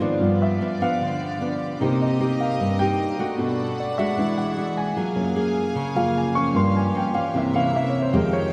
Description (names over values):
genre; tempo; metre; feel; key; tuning
bossa nova; 151 BPM; 4/4; straight; unclear; A4 = 440 Hz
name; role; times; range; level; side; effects
nylon-string guitar; accompaniment; 0.0-8.5 s; G2 to Ab4; -26 LUFS; equal; none
warm grand piano; accompaniment; 0.0-8.5 s; F2 to Db6; -26 LUFS; equal; none
rich studio string section; sustained chords; 0.0-8.5 s; Bb3 to Ab5; -35 LUFS; equal; none
room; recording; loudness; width
wet church reverb, RT60 3.3 s; recorded in a church or concert hall; -23 LUFS; mono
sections
0.0-8.5 A section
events
grand piano solo 0.0-8.5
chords
0.2 G7; 1.8 Cm7; 3.4 Bm7; 4.2 E9; 5.0 Gbmaj9; 6.6 Gm7b5; 7.4 C7b9